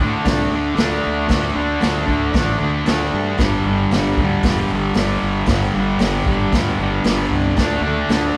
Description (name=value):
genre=garage rock duo or trio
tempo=115 BPM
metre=4/4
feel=straight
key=unclear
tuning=A4 = 440 Hz
part: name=fuzz guitar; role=riff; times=0.0-8.4 s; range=G2 to D4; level=-20 LUFS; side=equal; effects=distortion
part: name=fuzz fingered electric bass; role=bass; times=0.0-8.3 s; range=E1 to A2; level=-27 LUFS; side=equal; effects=overdrive
part: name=crunchy breakbeat drum kit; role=drums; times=0.3-8.2 s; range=hi-hat, kick drum, snare drum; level=-24 LUFS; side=equal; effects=none
room=moderate large studio reverb, RT60 1.1 s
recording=band playing live in one room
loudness=-18 LUFS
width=mono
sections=0.0-8.4 A section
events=none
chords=0.0 D5; 3.4 G5; 7.6 D5